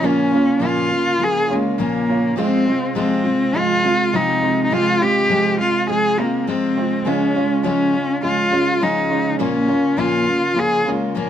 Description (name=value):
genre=acoustic folk duo or small band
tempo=103 BPM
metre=4/4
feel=straight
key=F minor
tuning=A4 = 444 Hz
part: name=dark cello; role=melody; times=0.0-11.3 s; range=Ab3 to Ab4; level=-18 LUFS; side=left 1 dB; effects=none
part: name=picked steel-string acoustic guitar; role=accompaniment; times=0.0-11.3 s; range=Bb2 to F4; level=-22 LUFS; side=left 3 dB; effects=none
part: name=mellow tonewheel organ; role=sustained chords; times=0.0-11.3 s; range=C3 to F4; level=-30 LUFS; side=right 2 dB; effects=slow rotary speaker
part: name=clear upright piano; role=arpeggios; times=0.0-11.3 s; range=Ab3 to F4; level=-23 LUFS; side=right 7 dB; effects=none
room=light reverb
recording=close, detailed microphones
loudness=-16 LUFS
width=side -10 dB against mid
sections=0.0-11.3 A section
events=none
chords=0.0 Bbm; 2.4 Fm/C; 7.0 Db; 9.4 Bbm